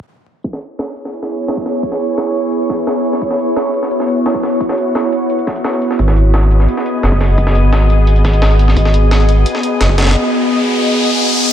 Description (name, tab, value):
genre	liquid drum and bass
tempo	173 BPM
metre	4/4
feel	straight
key	C# minor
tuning	A4 = 440 Hz
part	glassy FM pad	sustained chords	1.0-11.5 s	B3 to D#5	-15 LUFS	equal	ensemble chorus, built-in reverb
part	breakbeat sampler-style drum kit	drums	0.4-10.2 s	hi-hat, snare drum	-22 LUFS	equal	high-pass filter on hats, high-pass filter on snare
part	electronic hi-hat	drums	0.4-10.1 s	none	-34 LUFS	right 1 dB	none
part	electronic kick drum	drums	0.4-10.0 s	none	-24 LUFS	equal	high-pass filter on kick, high-pass filter on room
part	sub bass with octave	bass	6.0-10.2 s	F#1 to G#1	-10 LUFS	equal	none
part	riser	sound effects	9.5-11.5 s	none	-18 LUFS	left 1 dB	none
room	moderate lush hall reverb, RT60 1.9 s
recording	dreamy mix soaked in reverb, low-pass filter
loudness	-11 LUFS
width	side -10 dB against mid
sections	0.4-11.5 A section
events	filter sweep 0.4-11.5; riser 9.5-11.5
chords	0.4 C#m7; 6.0 G#m7